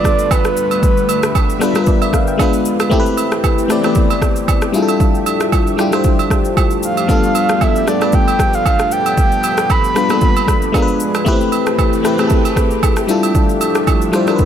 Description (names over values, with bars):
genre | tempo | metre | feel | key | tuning
amapiano | 115 BPM | 4/4 | swing 55% on 16ths | unclear | A4 = 440 Hz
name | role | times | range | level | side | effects
breathy flute-like synth lead | melody | 0.0-1.3, 6.8-11.0 s | B4 to B5 | -17 LUFS | right 2 dB | chorus, digital delay
FM electric piano | accompaniment | 0.0-14.5 s | G3 to G5 | -16 LUFS | left 3 dB | chorus
lush unison pad | sustained chords | 0.0-14.5 s | D3 to E5 | -22 LUFS | right 1 dB | chorus, phaser
deep house drum kit | drums | 0.0-14.5 s | kick drum, rim click, shaker | -16 LUFS | equal | none
agogo bells and woodblock | percussion | 0.3-14.4 s | none | -23 LUFS | right 10 dB | none
room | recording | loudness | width
light reverb | none | -12 LUFS | side -9 dB against mid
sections
0.0-14.5 A section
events
none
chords
0.0 G9; 2.4 G#dim7; 2.9 Am9; 4.7 Fmaj13; 7.1 G9; 10.7 G#dim7; 11.3 Am9; 13.1 Fmaj13